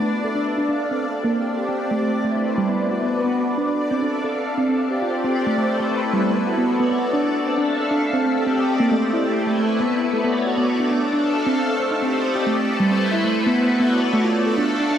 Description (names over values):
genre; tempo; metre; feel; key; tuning
IDM; 135 BPM; 4/4; straight; A minor; A4 = 439 Hz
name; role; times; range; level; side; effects
soft string machine; sustained chords; 0.0-15.0 s; A3 to F5; -23 LUFS; left 1 dB; phaser, ensemble chorus, shimmer reverb
harp-like synth pluck; arpeggios; 0.0-15.0 s; G3 to C5; -21 LUFS; right 1 dB; chorus, vintage 12-bit sampler grit, digital delay
bubbling stepped-filter texture; texture; 0.0-15.0 s; A3 to D5; -27 LUFS; equal; chorus, built-in reverb, shimmer reverb
room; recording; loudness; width
wet lush hall reverb, RT60 2.8 s; none; -18 LUFS; side -9 dB against mid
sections
0.0-5.4 A section; 5.4-15.0 B section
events
filter sweep on string machine 0.0-5.4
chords
0.0 Dmadd9; 0.9 Csus2; 1.8 Am9; 2.7 Bm; 3.6 Dmadd9; 4.5 Csus2; 5.4 Am9; 6.2 Bm9; 7.1 Dmadd9; 8.0 Cmadd9; 8.9 Am9; 9.8 Bm9; 10.7 Dmadd9; 11.6 Cmadd9; 12.5 Am9; 13.4 Bm9; 14.2 Dmadd9